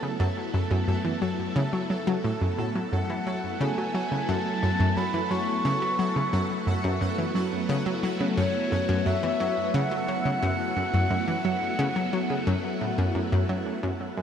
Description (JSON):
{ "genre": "ambient", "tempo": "88 BPM", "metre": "4/4", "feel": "straight", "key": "F# minor", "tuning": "A4 = 441 Hz", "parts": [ { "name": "phased string machine", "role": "sustained chords", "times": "0.0-14.2 s", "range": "F#3 to E4", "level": "-30 LUFS", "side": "equal", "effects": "ensemble chorus, phaser" }, { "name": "analog pluck", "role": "riff", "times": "0.0-14.2 s", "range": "F#2 to F#3", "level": "-27 LUFS", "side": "equal", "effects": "chorus, analog delay" }, { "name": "pulsing gated texture", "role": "texture", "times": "0.0-13.9 s", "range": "A4 to A5", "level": "-37 LUFS", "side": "right 2 dB", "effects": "chorus, built-in reverb" }, { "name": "mellow concert flute", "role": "melody", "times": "2.9-13.2 s", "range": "C#5 to C#6", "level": "-30 LUFS", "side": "equal", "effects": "analog delay" } ], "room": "wet shimmer reverb, RT60 6.7 s", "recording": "cassette tape", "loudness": "-24 LUFS", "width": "side -8 dB against mid", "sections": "0.0-13.8 A section", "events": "fade-in on string machine 0.0-13.8", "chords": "0.0 F#m" }